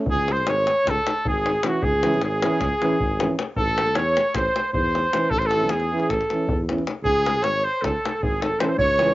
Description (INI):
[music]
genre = balkan folk, Balkan brass band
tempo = 309 BPM (eighths)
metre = 9/8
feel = straight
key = unclear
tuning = A4 = 439 Hz
[part]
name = mellow euphonium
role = accompaniment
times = 0.0-9.1 s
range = C#4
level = -30 LUFS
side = left 2 dB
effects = cassette tape
[part]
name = warm euphonium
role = accompaniment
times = 0.0-9.1 s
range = E3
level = -27 LUFS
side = right 3 dB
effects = cassette tape
[part]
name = clear cornet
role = melody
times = 0.1-9.1 s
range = F#4 to C#5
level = -23 LUFS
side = left 1 dB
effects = none
[part]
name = bright clarinet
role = second line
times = 0.1-9.1 s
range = F#4 to C#5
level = -26 LUFS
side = right 3 dB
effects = cassette tape
[part]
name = mellow tuba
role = bass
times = 0.1-9.1 s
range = G#1 to E2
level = -27 LUFS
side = equal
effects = none
[part]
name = davul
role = percussion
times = 0.1-9.1 s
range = none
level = -27 LUFS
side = left 2 dB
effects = none
[sound]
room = light reverb, small room reverb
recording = home recording on cassette, nothing above 7.5 kHz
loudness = -19 LUFS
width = side -17 dB against mid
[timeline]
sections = 0.1-9.1 A section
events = none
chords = 0.1 C#m; 3.6 A; 7.1 C#m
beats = | 0.07 0.26 0.46 0.65 0.85 1.04 1.24 1.43 1.63 | 1.82 2.02 2.21 2.40 2.60 2.79 2.99 3.18 3.38 | 3.57 3.76 3.96 4.15 4.35 4.54 4.73 4.93 5.12 | 5.32 5.51 5.70 5.90 6.09 6.28 6.48 6.67 6.86 | 7.05 7.25 7.44 7.63 7.83 8.02 8.21 8.40 8.60 | 8.79 8.98